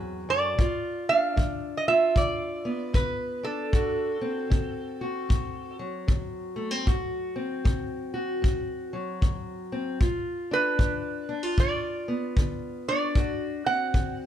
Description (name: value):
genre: acoustic country blues, solo or duo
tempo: 76 BPM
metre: 4/4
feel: swing 62% on 8ths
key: D mixolydian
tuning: A4 = 440 Hz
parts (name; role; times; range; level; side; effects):
- metal-body resonator slide guitar; melody; 0.0-5.8, 10.5-14.3 s; A4 to F#5; -27 LUFS; right 4 dB; plate reverb
- fingerpicked steel-string acoustic guitar; accompaniment; 0.0-14.3 s; D2 to F#4; -31 LUFS; left 2 dB; none
- kick drum; drums; 0.6-14.2 s; none; -25 LUFS; equal; none
room: light reverb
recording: none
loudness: -25 LUFS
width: side -10 dB against mid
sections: 0.0-14.3 A section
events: none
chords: 0.0 D7; 0.6 G7; 3.7 D7; 10.0 G7; 13.2 D7